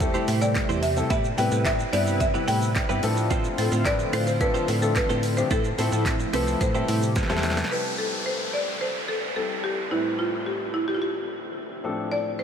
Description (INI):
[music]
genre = dance-pop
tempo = 109 BPM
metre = 4/4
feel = straight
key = A minor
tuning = A4 = 437 Hz
[part]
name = buzzing marimba with medium hard mallets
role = melody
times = 0.0-12.4 s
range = E4 to G5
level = -28 LUFS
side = equal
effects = analog delay
[part]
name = warm grand piano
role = accompaniment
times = 0.0-12.4 s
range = A2 to B4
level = -30 LUFS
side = left 4 dB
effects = sidechain pumping
[part]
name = chorused pulse-width pad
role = sustained chords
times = 0.0-7.7 s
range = C3 to B4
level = -32 LUFS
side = right 1 dB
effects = sidechain pumping
[part]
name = direct-recorded clean electric guitar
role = riff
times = 0.0-7.6 s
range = A3 to C5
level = -33 LUFS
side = right 6 dB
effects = wide subtle chorus
[part]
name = slap-like FM bass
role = bass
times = 0.0-7.6 s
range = C2 to A2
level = -27 LUFS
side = right 1 dB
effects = sidechain pumping
[part]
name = deep house drum kit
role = drums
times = 0.0-7.8 s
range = handclaps, hi-hat, kick drum, shaker, snare drum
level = -29 LUFS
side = right 1 dB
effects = none
[part]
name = downlifter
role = sound effects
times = 7.7-12.1 s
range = none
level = -32 LUFS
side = equal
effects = none
[sound]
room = moderate huge ambient reverb, RT60 8.3 s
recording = dreamy mix soaked in reverb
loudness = -22 LUFS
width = side -8 dB against mid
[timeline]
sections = 0.0-7.7 A section; 7.7-12.4 B section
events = drum fill 7.2-7.7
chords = 0.0 Am7; 1.1 Cmaj7; 3.0 Dm7/A; 5.5 Fmaj7/A; 6.6 Am7; 9.9 Cmaj7/A; 11.8 Dm7/A